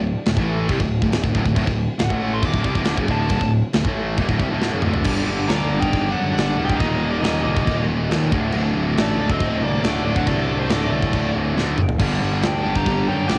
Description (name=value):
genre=heavy metal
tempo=138 BPM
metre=4/4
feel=straight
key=D phrygian dominant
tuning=A4 = 440 Hz
part: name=distorted electric guitar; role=riff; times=0.0-13.4 s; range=D2 to A3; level=-26 LUFS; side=equal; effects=distortion, cassette tape
part: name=scooped high-gain guitar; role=riff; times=0.0-13.4 s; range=D2 to A3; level=-28 LUFS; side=equal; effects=distortion, cassette tape
part: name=fuzz picked electric bass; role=bass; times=0.0-13.4 s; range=D1 to F#2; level=-27 LUFS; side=equal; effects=overdrive
part: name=tight metal drum kit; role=drums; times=0.3-13.4 s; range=china cymbal, crash cymbal, kick drum, snare drum, toms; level=-26 LUFS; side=equal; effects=cassette tape
part: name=dark smooth lead guitar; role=melody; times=2.0-13.4 s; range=C5 to D6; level=-30 LUFS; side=equal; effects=overdrive, analog delay
part: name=nasal lead guitar with a parked wah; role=second line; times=5.5-13.4 s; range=A3 to G4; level=-31 LUFS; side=equal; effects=overdrive, cassette tape
room=light reverb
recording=home recording on cassette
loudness=-20 LUFS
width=mono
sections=0.0-5.1 A section; 5.1-13.4 B section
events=drum fill 4.6-5.1, 11.6-12.0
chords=0.0 D5; 5.1 G5; 6.8 Eb5; 8.3 D5; 12.0 G5